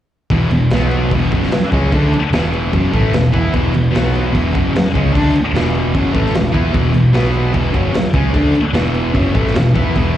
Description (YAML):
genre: garage rock duo or trio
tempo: 149 BPM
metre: 4/4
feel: straight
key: unclear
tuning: A4 = 439 Hz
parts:
  - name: thick fuzz guitar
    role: riff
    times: 0.3-10.2 s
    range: E2 to E4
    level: -15 LUFS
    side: equal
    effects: distortion, slapback echo
  - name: hollow-body short-scale picked electric bass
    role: bass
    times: 0.3-10.1 s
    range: E1 to E2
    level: -18 LUFS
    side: equal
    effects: none
  - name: crunchy breakbeat drum kit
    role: drums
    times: 0.3-10.1 s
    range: crash cymbal, kick drum, snare drum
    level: -19 LUFS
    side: equal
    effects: none
room: light reverb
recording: live gig heard through the venue's PA, recital hall reverb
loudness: -12 LUFS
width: side -12 dB against mid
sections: 0.3-10.2 A section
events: none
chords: 0.3 E5; 0.7 B5; 1.1 E5; 3.9 B5; 4.3 E5; 7.1 B5; 7.5 E5